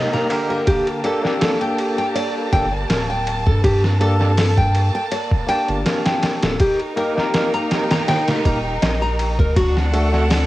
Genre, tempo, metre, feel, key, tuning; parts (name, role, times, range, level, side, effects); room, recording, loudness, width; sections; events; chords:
trip hop; 81 BPM; 4/4; swing 53% on 16ths; G harmonic minor; A4 = 439 Hz
barky tine electric piano; accompaniment; 0.0-10.2 s; D3 to A5; -24 LUFS; equal; medium stereo tremolo, vintage 12-bit sampler grit, cassette tape, tape echo
clear studio violin section; sustained chords; 0.0-10.5 s; Bb3 to A5; -26 LUFS; right 1 dB; cassette tape
nylon-string guitar; arpeggios; 0.0-10.5 s; F#4 to Bb5; -22 LUFS; left 1 dB; cassette tape, analog delay
dusty soul sampler-style drum kit; drums; 0.1-10.5 s; hi-hat, kick drum, ride cymbal, snare drum; -21 LUFS; equal; overdrive, cassette tape
round analog bass; bass; 2.5-10.5 s; D1 to G2; -19 LUFS; equal
little or no reverb; home recording on cassette; -16 LUFS; side -16 dB against mid
0.0-10.5 A section
0.0 Eb; 0.7 Gmadd9; 6.6 Eb; 9.6 D